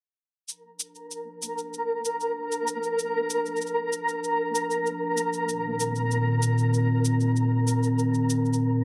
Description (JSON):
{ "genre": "folktronica", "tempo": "96 BPM", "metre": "4/4", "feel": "straight", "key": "Bb major", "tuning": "A4 = 440 Hz", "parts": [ { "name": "warbly tape-like pad", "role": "sustained chords", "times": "0.5-8.8 s", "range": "Bb2 to Bb4", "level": "-28 LUFS", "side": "equal", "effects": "chorus, built-in reverb" }, { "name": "shaker", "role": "drums", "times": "0.5-8.7 s", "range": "none", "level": "-36 LUFS", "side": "equal", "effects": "none" }, { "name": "flickering grainy texture", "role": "texture", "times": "1.2-8.8 s", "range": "Bb4 to Bb5", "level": "-30 LUFS", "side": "equal", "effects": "built-in reverb" } ], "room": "light reverb", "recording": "dry, close 1970s-style studio recording", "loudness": "-26 LUFS", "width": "mono", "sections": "0.5-8.8 A section", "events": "none", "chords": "0.5 Bb; 5.5 Cm7/Bb", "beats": "| 0.48 1.11 1.73 2.36 | 2.98 3.61 4.23 4.86 | 5.48 6.11 6.73 7.36 | 7.98 8.61" }